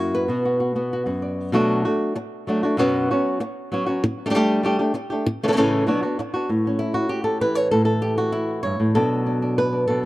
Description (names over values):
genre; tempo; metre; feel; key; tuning
flamenco; 194 BPM; 4/4; straight; B minor; A4 = 440 Hz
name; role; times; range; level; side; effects
flamenco guitar; solo; 0.0-10.1 s; F#2 to D5; -19 LUFS; equal; tape echo
room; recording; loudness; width
light reverb; dry, close 1970s-style studio recording; -19 LUFS; side -17 dB against mid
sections
0.0-1.5 A section; 1.5-6.5 B section; 6.5-10.1 C section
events
none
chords
0.3 Bm; 1.5 Bm7; 2.8 F#sus4; 4.0 Gsus2; 5.3 A; 5.9 Bm; 6.5 A; 9.0 Bm